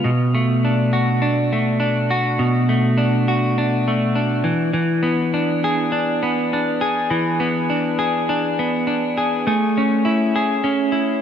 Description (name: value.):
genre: indie pop.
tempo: 102 BPM.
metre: 4/4.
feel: straight.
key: A major.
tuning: A4 = 440 Hz.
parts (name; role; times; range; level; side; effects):
clean electric guitar; solo; 0.0-11.2 s; B2 to G#4; -17 LUFS; equal; wide subtle chorus, warbly pitch drift, tape echo.
room: moderate huge ambient reverb, RT60 5.1 s.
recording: dreamy mix soaked in reverb.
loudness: -17 LUFS.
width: side -8 dB against mid.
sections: 0.0-9.5 A section; 9.5-11.2 B section.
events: none.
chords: 0.0 Bm7; 4.5 E7; 9.5 Amaj7.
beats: | 0.04 0.63 1.22 1.81 | 2.40 2.99 3.58 4.17 | 4.76 5.34 5.93 6.52 | 7.11 7.70 8.28 8.87 | 9.46 10.04 10.63.